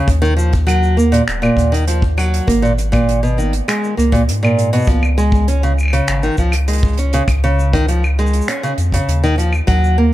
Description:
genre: folktronica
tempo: 100 BPM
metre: 4/4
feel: straight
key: Db mixolydian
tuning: A4 = 440 Hz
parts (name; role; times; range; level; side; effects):
- nylon-string guitar; arpeggios; 0.0-10.1 s; Bb2 to Db4; -16 LUFS; equal; digital delay
- round analog bass; bass; 0.1-10.1 s; Eb1 to Ab2; -16 LUFS; equal; none
- kick drum; drums; 0.1-9.8 s; none; -18 LUFS; equal; none
- soft brush drum kit; drums; 0.1-10.0 s; claves, finger snaps, hi-hat, shaker; -25 LUFS; right 1 dB; none
room: studio reverb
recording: dark, warm production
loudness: -13 LUFS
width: side -15 dB against mid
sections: 0.0-10.1 A section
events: none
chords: 0.1 Ebmadd9; 2.5 Abmadd9; 4.9 Dbadd9

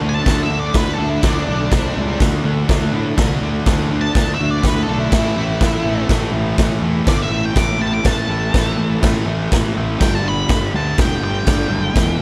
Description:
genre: garage rock duo or trio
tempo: 123 BPM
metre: 4/4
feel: straight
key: unclear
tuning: A4 = 440 Hz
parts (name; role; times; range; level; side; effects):
- thick fuzz guitar; riff; 0.0-12.2 s; E2 to D4; -24 LUFS; equal; distortion
- fuzz picked electric bass; bass; 0.0-12.2 s; E1 to A2; -24 LUFS; equal; overdrive
- octave-fuzz lead guitar; melody; 0.1-12.2 s; D4 to D6; -26 LUFS; equal; distortion
- raw garage drum kit; drums; 0.3-12.1 s; crash cymbal, kick drum, snare drum; -21 LUFS; equal; none
room: light reverb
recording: faint mains hum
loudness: -17 LUFS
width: mono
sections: 0.0-12.2 A section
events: lead electric guitar solo 0.0-12.2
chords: 0.0 D5; 1.7 C5; 2.2 D5; 5.1 A5; 10.0 G

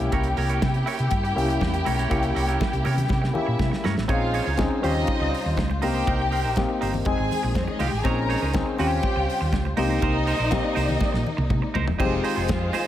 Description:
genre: disco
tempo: 121 BPM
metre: 4/4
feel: straight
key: unclear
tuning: A4 = 440 Hz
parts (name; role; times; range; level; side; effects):
- warm studio violin section; second line; 0.0-12.9 s; Ab3 to Bb5; -28 LUFS; left 1 dB; none
- clean electric guitar; accompaniment; 0.0-12.9 s; Ab3 to Db5; -32 LUFS; right 8 dB; spring reverb
- mellow clav; accompaniment; 0.0-12.8 s; G3 to Ab4; -28 LUFS; left 3 dB; none
- clear studio string section; sustained chords; 0.0-12.9 s; C3 to C5; -33 LUFS; equal; none
- hollow-body short-scale fingered electric bass; bass; 0.0-12.7 s; E1 to C3; -26 LUFS; right 1 dB; none
- damped 70s drum kit; drums; 0.0-12.9 s; crash cymbal, hi-hat, kick drum, snare drum, toms; -28 LUFS; right 1 dB; none
- congas; percussion; 0.1-12.8 s; none; -33 LUFS; left 6 dB; none
room: light reverb, studio reverb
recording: none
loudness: -21 LUFS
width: side -12 dB against mid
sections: 0.0-4.1 A section; 4.1-12.0 B section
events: drum fill 3.1-4.1, 11.0-12.0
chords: 0.0 C7b9; 4.1 Bbm11; 4.8 Eb13; 5.8 Cm7; 7.1 Fm9; 8.1 Bbm11; 8.8 Eb13; 9.8 Cm7; 12.0 Fm7

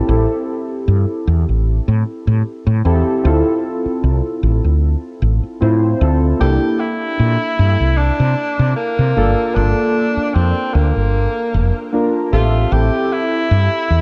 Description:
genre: vaporwave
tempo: 76 BPM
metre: 4/4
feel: swing 54% on 16ths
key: G dorian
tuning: A4 = 439 Hz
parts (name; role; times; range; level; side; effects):
- warbly lo-fi synth keys; accompaniment; 0.0-14.0 s; Bb3 to E5; -22 LUFS; equal; subtle chorus, analog delay
- woody fretless electric bass; bass; 0.1-14.0 s; F1 to C3; -16 LUFS; equal; tube saturation
- clear tenor saxophone; melody; 6.4-14.0 s; Bb3 to G4; -22 LUFS; equal; tape echo
room: moderate lush hall reverb, RT60 1.7 s, small room reverb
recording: dreamy mix soaked in reverb, cassette tape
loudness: -16 LUFS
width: mono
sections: 0.0-14.0 A section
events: none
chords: 0.0 Am7; 3.2 Dm9; 6.4 C13; 9.2 Gm9; 12.3 Am7

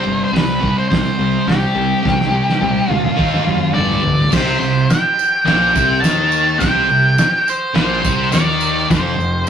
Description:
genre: garage rock duo or trio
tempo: 105 BPM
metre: 4/4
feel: straight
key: unclear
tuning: A4 = 441 Hz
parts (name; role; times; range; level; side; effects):
- octave-fuzz lead guitar; melody; 0.0-9.4 s; G4 to A5; -17 LUFS; right 1 dB; distortion
- thick fuzz guitar; riff; 0.0-9.4 s; F2 to Eb4; -17 LUFS; equal; distortion
- fuzz picked electric bass; bass; 0.1-9.4 s; F1 to F#2; -23 LUFS; equal; overdrive
- cloth-damped thuddy drum kit; drums; 0.4-9.5 s; crash cymbal, hi-hat, kick drum, snare drum, toms; -20 LUFS; right 1 dB; none
- tambourine; percussion; 4.3-9.5 s; none; -33 LUFS; right 5 dB; none
room: wet studio reverb, RT60 0.5 s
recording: rough rehearsal-room recording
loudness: -13 LUFS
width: side -8 dB against mid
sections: 0.0-4.3 A section; 4.3-9.5 B section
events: drum fill 2.0-4.3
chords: 0.0 C5; 3.2 Eb5; 3.8 G5; 4.3 C5; 8.9 F5

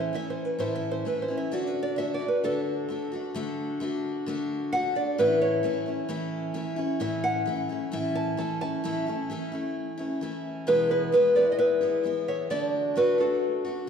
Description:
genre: country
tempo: 131 BPM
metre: 4/4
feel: straight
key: unclear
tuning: A4 = 436 Hz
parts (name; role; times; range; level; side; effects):
- nylon-string guitar; melody; 0.0-13.6 s; F#4 to A5; -25 LUFS; equal; none
- picked steel-string acoustic guitar; accompaniment; 0.0-13.9 s; E2 to F#4; -30 LUFS; left 1 dB; none
room: wet concert hall reverb, RT60 2.2 s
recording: recorded in a church or concert hall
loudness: -25 LUFS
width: side -7 dB against mid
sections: 0.0-8.8 A section; 8.8-10.7 B section; 10.7-13.9 C section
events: nylon-string guitar solo 0.0-8.8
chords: 0.0 A; 1.5 D; 5.2 A; 10.7 E; 12.5 D

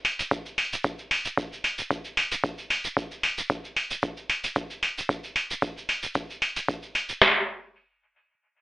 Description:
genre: techno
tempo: 113 BPM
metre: 4/4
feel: swing 54% on 16ths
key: none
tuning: none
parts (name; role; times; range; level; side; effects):
- electronic hi-hat; drums; 0.0-7.1 s; none; -33 LUFS; equal; none
- tube shaker; percussion; 0.2-7.2 s; none; -37 LUFS; right 2 dB; none
- booming analog drum machine; drums; 0.3-7.3 s; kick drum, snare drum; -28 LUFS; equal; none
room: digital ambience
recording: telephone sound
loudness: -25 LUFS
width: side -19 dB against mid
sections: 0.0-7.2 A section; 7.2-8.6 B section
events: none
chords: none

